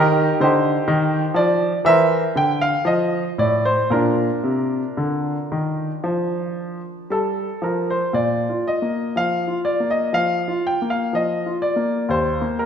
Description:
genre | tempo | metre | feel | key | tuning
classical, baroque-style suite movement for grand piano | 56-63 BPM | 4/4 | rubato | Bb major | A4 = 440 Hz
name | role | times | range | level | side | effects
clear grand piano | solo | 0.0-12.7 s | Eb2 to G5 | -18 LUFS | equal | none
room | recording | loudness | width
moderate scoring stage reverb, RT60 1.8 s | minimal, uncompressed stereo recording | -18 LUFS | side -8 dB against mid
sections
0.0-8.1 A section; 8.1-12.7 B section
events
none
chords
0.0 Cm; 1.9 C7/E; 2.9 F; 3.9 Bb; 8.1 Bb5; 12.1 Eb5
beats
0.87 1.85 2.86 | 3.90 4.96 6.04 7.09 | 8.13 9.13 10.12 11.11 | 12.08

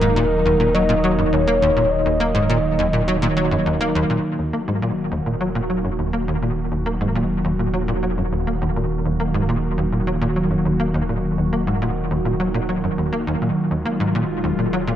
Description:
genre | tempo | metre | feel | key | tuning
ambient, sequencer-driven space music | 103 BPM | 4/4 | straight | Eb minor | A4 = 441 Hz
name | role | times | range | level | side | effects
mellow horn-like synth lead | melody | 0.0-3.7 s | Bb4 to Eb5 | -21 LUFS | equal | chorus, analog delay
phased analog pad | sustained chords | 0.0-15.0 s | Eb3 to Gb4 | -22 LUFS | right 1 dB | phaser, chorus
tight sequencer bass | riff | 0.0-14.9 s | Eb2 to Bb3 | -22 LUFS | equal | ensemble chorus, vintage 12-bit sampler grit, analog delay
warm sub bass | bass | 0.0-15.0 s | Eb1 | -27 LUFS | equal | none
room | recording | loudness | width
wet spring reverb, RT60 2.7 s | echo-heavy mix | -18 LUFS | side -11 dB against mid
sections
0.0-4.2 A section; 4.2-15.0 B section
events
filter sweep on analog synth bass 4.2-15.0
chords
0.0 Ebm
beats
0.17 0.75 1.33 | 1.91 2.50 3.08 3.66 | 4.24 4.83 5.41 5.99 | 6.57 7.16 7.74 8.32 | 8.90 9.48 10.07 10.65 | 11.23 11.81 12.40 12.98 | 13.56 14.14 14.73

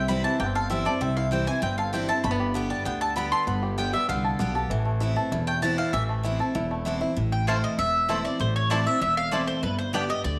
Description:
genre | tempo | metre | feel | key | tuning
bluegrass | 195 BPM | 4/4 | straight | A minor | A4 = 439 Hz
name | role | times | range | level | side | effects
bluegrass banjo | melody | 0.0-10.0 s | E3 to A4 | -34 LUFS | equal | tape echo
picked steel-string acoustic guitar | accompaniment | 0.0-10.4 s | E2 to G4 | -32 LUFS | equal | none
mandolin | stabs | 0.0-10.0 s | A3 to C6 | -32 LUFS | equal | none
upright bass | bass | 0.0-10.4 s | E1 to D2 | -31 LUFS | equal | none
mandolin | melody | 7.3-10.4 s | B4 to G5 | -28 LUFS | equal | none
room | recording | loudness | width
moderate echo chamber reverb, RT60 1.4 s, studio reverb | none | -26 LUFS | mono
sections
0.0-7.2 A section; 7.2-10.4 B section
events
mandolin solo 0.0-7.2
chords
0.0 C; 2.2 G; 4.7 Amadd9; 7.2 Am; 9.6 G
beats
0.09 0.40 0.70 | 1.01 1.32 1.63 1.94 | 2.24 2.55 2.86 3.17 | 3.47 3.78 4.09 4.40 | 4.70 5.01 5.32 5.63 | 5.93 6.24 6.55 6.86 | 7.17 7.47 7.78 8.09 | 8.40 8.71 9.01 9.32 | 9.63 9.94 10.25

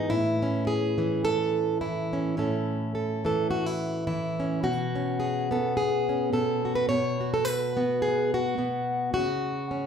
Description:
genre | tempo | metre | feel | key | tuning
folk, solo fingerstyle acoustic guitar | 106 BPM | 4/4 | swing 55% on 8ths | unclear | A4 = 440 Hz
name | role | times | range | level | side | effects
fingerpicked plugged-in steel-string acoustic guitar | solo | 0.0-9.9 s | A2 to C#5 | -25 LUFS | equal | none
room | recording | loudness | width
wet large studio reverb, RT60 1.1 s | heard from further back in the room | -25 LUFS | side -7 dB against mid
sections
0.0-9.9 A section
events
none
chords
0.1 A; 4.6 Bsus2; 9.1 N.C.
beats
| 0.11 0.67 1.24 1.80 | 2.37 2.93 3.50 4.06 | 4.62 5.19 5.75 6.32 | 6.88 7.44 8.01 8.57 | 9.13 9.69

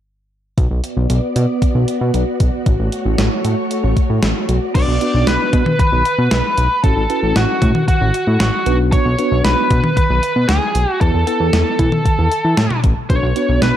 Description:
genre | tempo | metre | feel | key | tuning
synth-pop | 115 BPM | 4/4 | straight | B minor | A4 = 440 Hz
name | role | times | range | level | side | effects
soft string machine | sustained chords | 0.6-4.7 s | A3 to D5 | -21 LUFS | equal | ensemble chorus
fat analog bass | bass | 0.6-13.7 s | A1 to E3 | -16 LUFS | equal | none
clean 12-bit digital drum machine | drums | 0.6-13.7 s | crash cymbal, hi-hat, kick drum, snare drum, toms | -18 LUFS | equal | none
biting lead guitar | melody | 4.8-13.8 s | F#4 to D5 | -18 LUFS | equal | overdrive
tine electric piano | accompaniment | 4.8-13.8 s | B3 to A5 | -21 LUFS | right 1 dB | medium stereo tremolo
room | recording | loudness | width
light reverb, digital ambience | dark, warm production | -13 LUFS | side -11 dB against mid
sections
0.6-4.8 A section; 4.8-13.8 B section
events
tine electric piano fill 12.3-13.1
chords
0.6 Bm; 2.7 A6; 4.5 Bm; 6.8 A6; 8.7 Bm; 11.0 Esus4; 13.1 Bm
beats
| 0.58 1.10 1.62 2.14 | 2.66 3.19 3.71 4.23 | 4.75 5.27 5.79 6.32 | 6.84 7.36 7.88 8.40 | 8.92 9.45 9.97 10.49 | 11.01 11.53 12.05 12.58 | 13.10 13.62

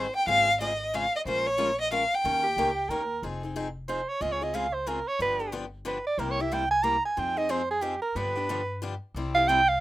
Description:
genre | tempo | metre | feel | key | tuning
acoustic string swing (jazz manouche) | 182 BPM | 3/4 | swing 61% on 8ths | F minor from 3.2 s | A4 = 440 Hz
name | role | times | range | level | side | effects
warm violin | melody | 0.0-2.9 s | C5 to G5 | -24 LUFS | equal | none
picked steel-string acoustic guitar | accompaniment | 0.0-9.6 s | C3 to Bb4 | -33 LUFS | left 4 dB | none
upright bass | bass | 0.0-9.8 s | F1 to G2 | -37 LUFS | left 1 dB | none
warm soprano saxophone | second line | 2.4-9.8 s | G4 to Bb5 | -26 LUFS | right 2 dB | none
room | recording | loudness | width
light reverb | rough home demo mix | -25 LUFS | side -15 dB against mid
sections
0.0-3.2 A section; 3.2-9.8 B section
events
soprano saxophone solo 3.2-9.8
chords
0.3 Dbmaj7/Ab; 1.3 Bbm7; 2.2 Eb7; 3.2 Fm7; 4.2 Dbmaj7; 5.2 G7; 6.2 C7; 7.2 Fm7; 8.2 G7; 9.2 C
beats
| 0.27 0.60 0.93 | 1.26 1.59 1.92 | 2.24 2.57 2.90 | 3.23 3.56 3.89 | 4.22 4.55 4.88 | 5.21 5.54 5.87 | 6.19 6.52 6.85 | 7.18 7.51 7.84 | 8.17 8.49 8.82 | 9.15 9.48

